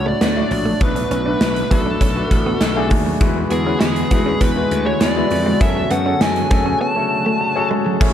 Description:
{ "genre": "1980s-style pop", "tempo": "100 BPM", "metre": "4/4", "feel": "straight", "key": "unclear", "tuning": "A4 = 440 Hz", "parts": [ { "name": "fuzz lead guitar", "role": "melody", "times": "0.0-7.7 s", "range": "G#4 to A5", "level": "-22 LUFS", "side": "equal", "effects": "distortion" }, { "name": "clear concert grand piano", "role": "accompaniment", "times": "0.0-8.1 s", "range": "A2 to F#5", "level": "-22 LUFS", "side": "left 4 dB", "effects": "none" }, { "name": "granular cloud pad", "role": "sustained chords", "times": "0.0-8.1 s", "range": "A2 to F#4", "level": "-26 LUFS", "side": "left 1 dB", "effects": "built-in reverb" }, { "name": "gritty slap bass", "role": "bass", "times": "0.0-8.1 s", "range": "A1 to F#2", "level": "-23 LUFS", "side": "equal", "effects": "overdrive" }, { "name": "direct-recorded clean electric guitar", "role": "riff", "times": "0.1-8.1 s", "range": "F#3 to D4", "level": "-25 LUFS", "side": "right 4 dB", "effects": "lush chorus, digital delay" }, { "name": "gated 80s drum kit", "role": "drums", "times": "0.2-8.1 s", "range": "crash cymbal, hi-hat, kick drum, snare drum", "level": "-18 LUFS", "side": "equal", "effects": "none" } ], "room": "light reverb, small room ambience", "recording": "dark, warm production", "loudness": "-15 LUFS", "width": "side -10 dB against mid", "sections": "0.0-8.0 A section", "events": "none", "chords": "0.0 D; 0.8 Bm7; 3.2 Eadd9; 5.6 F#madd9", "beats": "0.21 | 0.81 1.41 2.01 2.61 | 3.21 3.81 4.41 5.01 | 5.61 6.21 6.81 7.41 | 8.01" }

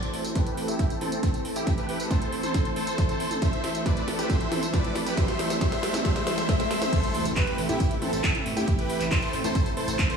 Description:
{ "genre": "uplifting trance", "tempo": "137 BPM", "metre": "4/4", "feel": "straight", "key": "A minor", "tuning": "A4 = 440 Hz", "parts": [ { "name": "big supersaw lead", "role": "melody", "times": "0.0-10.2 s", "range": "C4 to E5", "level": "-30 LUFS", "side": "equal", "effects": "sidechain pumping, low-pass filter, tape echo" }, { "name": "lush unison pad", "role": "sustained chords", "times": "0.0-10.1 s", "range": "C3 to A4", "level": "-32 LUFS", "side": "equal", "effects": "chorus, sidechain pumping" }, { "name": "house drum kit", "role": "drums", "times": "0.0-10.2 s", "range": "crash cymbal, handclaps, hi-hat, snare drum, tambourine, toms", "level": "-31 LUFS", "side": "equal", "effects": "studio reverb" }, { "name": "riser and impact", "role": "sound effects", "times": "0.0-8.7 s", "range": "none", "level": "-36 LUFS", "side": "equal", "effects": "none" }, { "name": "electronic kick drum", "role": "drums", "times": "0.4-10.1 s", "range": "none", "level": "-26 LUFS", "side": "right 1 dB", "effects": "studio reverb" }, { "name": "dark grand piano", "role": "second line", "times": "6.9-10.2 s", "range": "G4 to C5", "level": "-34 LUFS", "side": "right 3 dB", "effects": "lush chorus, sidechain pumping, tape echo" }, { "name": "fat analog bass", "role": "bass", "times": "7.0-10.0 s", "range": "A1 to A2", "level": "-32 LUFS", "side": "equal", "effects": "tube saturation, sidechain pumping" } ], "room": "moderate lush hall reverb, RT60 1.9 s", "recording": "dreamy mix soaked in reverb, small room ambience", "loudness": "-23 LUFS", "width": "side -6 dB against mid", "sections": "0.0-6.9 A section; 6.9-10.2 B section", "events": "build-up 0.0-6.9; drum fill 0.0-6.9; riser 0.0-6.9; filter sweep on supersaw synth 0.0-6.9; drop 6.9-10.2; impact 6.9-8.7", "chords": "0.0 Am", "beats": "0.35 0.79 1.23 | 1.67 2.11 2.54 2.98 | 3.42 3.86 4.30 4.74 | 5.17 5.61 6.05 6.49 | 6.92 7.36 7.80 8.24 | 8.68 9.11 9.55 9.99" }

